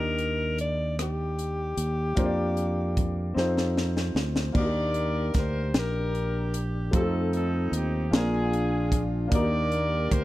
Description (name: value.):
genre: slow gospel.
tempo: 50 BPM (dotted quarters).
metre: 6/8.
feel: straight.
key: unclear.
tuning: A4 = 442 Hz.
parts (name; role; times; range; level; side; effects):
bright alto saxophone; melody; 0.0-3.7 s; G4 to D5; -31 LUFS; left 2 dB; none.
clear upright piano; accompaniment; 0.0-10.2 s; Bb2 to D5; -31 LUFS; equal; none.
fingered electric bass; bass; 0.0-10.2 s; Bb1 to F2; -29 LUFS; right 1 dB; none.
crisp fusion drum kit; drums; 0.2-10.2 s; crash cymbal, hi-hat, kick drum, rim click, snare drum; -27 LUFS; equal; none.
clear horn section; melody; 4.6-10.2 s; C4 to D5; -29 LUFS; left 1 dB; none.
room: small room ambience.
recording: none.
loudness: -24 LUFS.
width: side -16 dB against mid.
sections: 0.0-4.6 A section; 4.6-10.2 B section.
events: drum fill 3.4-4.6.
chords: 0.0 Ebmaj7; 2.2 Bb/F; 3.4 F7; 4.6 Ebmaj7; 6.9 F7; 8.1 Bb7; 9.3 Ebmaj7.